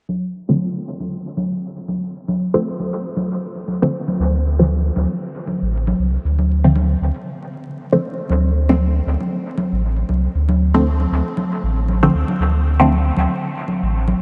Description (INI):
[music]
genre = dub techno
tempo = 117 BPM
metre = 4/4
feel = swing 56% on 16ths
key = D minor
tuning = A4 = 440 Hz
[part]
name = congas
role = percussion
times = 0.1-14.2 s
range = none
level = -26 LUFS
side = equal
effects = overdrive, dub echo
[part]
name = filtered dub chord stab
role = stabs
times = 0.5-12.9 s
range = D3 to C4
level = -23 LUFS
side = equal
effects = phaser, dub echo
[part]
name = warm sub bass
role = bass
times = 4.2-14.2 s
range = A1 to D2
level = -20 LUFS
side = equal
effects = none
[sound]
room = moderate huge ambient reverb, RT60 7.2 s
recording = dreamy mix soaked in reverb, vinyl crackle, low-pass filter, nothing above 10.3 kHz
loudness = -19 LUFS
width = mono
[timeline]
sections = 0.1-8.3 A section; 8.3-14.2 B section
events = filter sweep on synth stab 0.1-8.3, 8.3-14.2; filter sweep 0.1-8.3; break 7.3-8.3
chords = 0.1 D7(no3); 8.3 D5